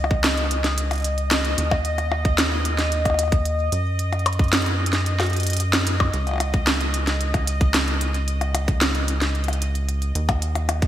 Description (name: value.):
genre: IDM.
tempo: 112 BPM.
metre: 4/4.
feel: straight.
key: unclear.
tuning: A4 = 436 Hz.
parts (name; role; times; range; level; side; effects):
rubbery square bass; bass; 0.0-10.9 s; Db2 to Gb2; -23 LUFS; equal; none.
glitchy drum kit; drums; 0.0-10.9 s; hi-hat, percussion blips, snare drum; -23 LUFS; equal; gated reverb, digital delay.
bubbling stepped-filter texture; texture; 0.0-10.9 s; Eb5; -28 LUFS; left 1 dB; chorus, built-in reverb.
electronic kick drum; drums; 0.1-10.9 s; none; -21 LUFS; equal; none.
room: moderate lush hall reverb, RT60 2.0 s, digital ambience.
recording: bright 1980s-style digital production.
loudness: -19 LUFS.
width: side -12 dB against mid.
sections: 0.0-10.9 A section.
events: none.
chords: 0.0 Dbsus2; 1.6 N.C.; 3.7 Ebm/Gb; 6.1 Dbsus2; 10.2 N.C..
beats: 0.24 0.78 1.31 | 1.85 2.38 2.92 3.46 | 3.99 4.53 5.06 5.60 | 6.13 6.67 7.21 7.74 | 8.28 8.81 9.35 9.88 | 10.42.